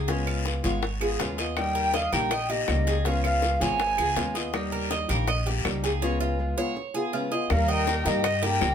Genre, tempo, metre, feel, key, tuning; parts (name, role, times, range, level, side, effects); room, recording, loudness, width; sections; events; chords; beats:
latin, Cuban son and guajira; 162 BPM; 4/4; straight; Eb major; A4 = 437 Hz
flamenco guitar; accompaniment; 0.0-8.7 s; Db3 to Ab4; -31 LUFS; left 2 dB
Cuban tres; arpeggios; 0.0-8.7 s; Db4 to Eb5; -31 LUFS; right 4 dB
upright bass; bass; 0.0-8.7 s; Ab1 to G2; -28 LUFS; equal
bongos; percussion; 0.1-8.7 s; -33 LUFS; left 7 dB
guiro; percussion; 0.1-8.7 s; -35 LUFS; left 5 dB
claves; percussion; 0.3-8.7 s; -37 LUFS; right 6 dB
breathy mellow jazz flute; melody; 1.6-4.4, 7.5-8.7 s; Eb5 to Ab5; -26 LUFS; equal
dark studio violin section; second line; 7.5-8.7 s; G4 to Bb4; -32 LUFS; equal
moderate studio reverb, RT60 0.5 s; band playing live in one room; -23 LUFS; side -8 dB against mid
0.0-7.5 A section; 7.5-8.7 B section
0.1 Db7; 1.6 Eb; 3.1 Db7; 4.5 Eb; 6.0 Db7; 7.5 Eb
| 0.08 0.46 0.83 1.20 | 1.57 1.94 2.31 2.68 | 3.05 3.43 3.80 4.17 | 4.54 4.91 5.28 5.65 | 6.02 6.39 6.76 7.13 | 7.50 7.87 8.24 8.61